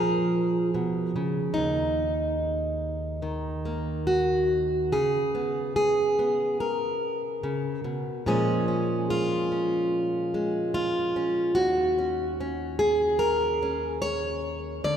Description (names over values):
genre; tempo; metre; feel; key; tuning
folk, solo fingerstyle acoustic guitar; 73 BPM; 4/4; straight; Eb minor; A4 = 439 Hz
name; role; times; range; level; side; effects
fingerpicked plugged-in steel-string acoustic guitar; solo; 0.0-15.0 s; Eb2 to D5; -24 LUFS; equal; none
room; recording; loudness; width
wet church reverb, RT60 3.3 s; recorded in a church or concert hall; -24 LUFS; side -8 dB against mid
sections
0.0-4.9 A section; 4.9-15.0 B section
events
none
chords
0.0 Bbm7; 1.6 Ebm; 4.9 Db5; 8.3 Bbm7; 11.6 Ebm7